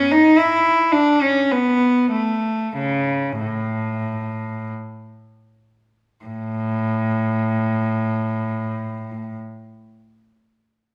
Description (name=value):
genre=classical, baroque-style suite movement for unaccompanied cello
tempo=39-57 BPM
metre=3/4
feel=rubato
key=A major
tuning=A4 = 441 Hz
part: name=rich cello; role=solo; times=0.0-9.4 s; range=A2 to E4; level=-20 LUFS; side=equal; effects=none
room=wet recital hall reverb, RT60 1.4 s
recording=none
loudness=-20 LUFS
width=mono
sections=0.0-6.3 A section; 6.3-10.7 B section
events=slowing down 0.0-6.3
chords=none